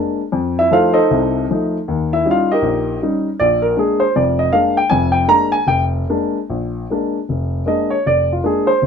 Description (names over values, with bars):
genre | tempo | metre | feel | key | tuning
solo jazz | 156 BPM | 4/4 | swing 64% on 8ths, rubato | Bb mixolydian | A4 = 441 Hz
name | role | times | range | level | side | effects
dark baby grand piano | solo | 0.0-8.9 s | F1 to Bb5 | -14 LUFS | equal | none
room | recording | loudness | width
light reverb | dark, warm production | -14 LUFS | side -6 dB against mid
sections
0.0-6.5 A section; 6.5-8.9 A section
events
grand piano solo 0.0-6.5, 6.5-8.9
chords
0.3 F7; 1.9 Eb7; 3.4 Bb7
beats
| 0.33 0.72 1.11 1.50 | 1.89 2.27 2.64 3.02 | 3.40 3.78 4.16 4.54 | 4.91 5.29 5.68 6.09 | 6.50 6.90 7.29 7.68 | 8.06 8.44 8.83